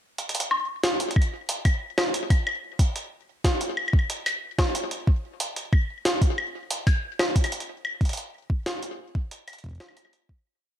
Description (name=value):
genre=IDM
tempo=92 BPM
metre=4/4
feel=straight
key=none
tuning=none
part: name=jungle sampler-style drum kit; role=drums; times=0.2-10.3 s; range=hi-hat, snare drum, woodblock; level=-26 LUFS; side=equal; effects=ping-pong delay
part: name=electronic kick drum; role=drums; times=1.2-10.4 s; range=none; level=-21 LUFS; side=equal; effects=overdrive
room=little or no reverb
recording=none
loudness=-23 LUFS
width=side -11 dB against mid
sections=0.2-10.6 groove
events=fade-out 7.1-10.6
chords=none